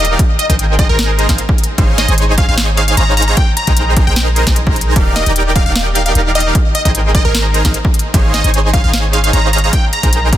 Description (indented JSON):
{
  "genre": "future bass",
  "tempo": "151 BPM",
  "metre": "4/4",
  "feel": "half-time",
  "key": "unclear",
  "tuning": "A4 = 440 Hz",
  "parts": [
    { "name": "plucky unison lead", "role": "melody", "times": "0.0-10.4 s", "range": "Bb4 to Bb5", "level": "-18 LUFS", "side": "equal", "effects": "phaser, sidechain pumping, digital delay" },
    { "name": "dense compressed supersaw", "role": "riff", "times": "0.0-10.4 s", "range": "Eb4 to Bb5", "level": "-17 LUFS", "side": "right 1 dB", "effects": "sidechain pumping, dub echo" },
    { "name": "warm 808-style bass", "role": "bass", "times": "0.0-10.4 s", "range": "Eb1 to Bb1", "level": "-15 LUFS", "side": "equal", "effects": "tube saturation, sidechain pumping" },
    { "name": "trap drum kit", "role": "drums", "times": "0.0-10.4 s", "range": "hi-hat, snare drum", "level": "-19 LUFS", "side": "left 1 dB", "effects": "soft clipping on snare, studio reverb" },
    { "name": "electronic kick drum", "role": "drums", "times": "0.2-10.4 s", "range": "none", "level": "-13 LUFS", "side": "equal", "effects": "studio reverb" }
  ],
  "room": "little or no reverb",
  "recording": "dense, heavily limited modern master",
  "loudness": "-10 LUFS",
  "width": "side -12 dB against mid",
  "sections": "0.0-10.4 A section",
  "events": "none",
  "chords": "0.2 Abmaj9; 1.8 Dbmaj9/Ab; 3.4 Bb13sus4; 5.0 Ebmaj9; 6.5 Abmaj9; 8.1 Dbmaj9/Ab; 9.7 Bb13sus4",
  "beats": "| 0.19 0.59 0.99 1.38 | 1.78 2.18 2.58 2.97 | 3.37 3.77 4.17 4.56 | 4.96 5.36 5.75 6.15 | 6.55 6.95 7.34 7.74 | 8.14 8.54 8.93 9.33 | 9.73 10.13"
}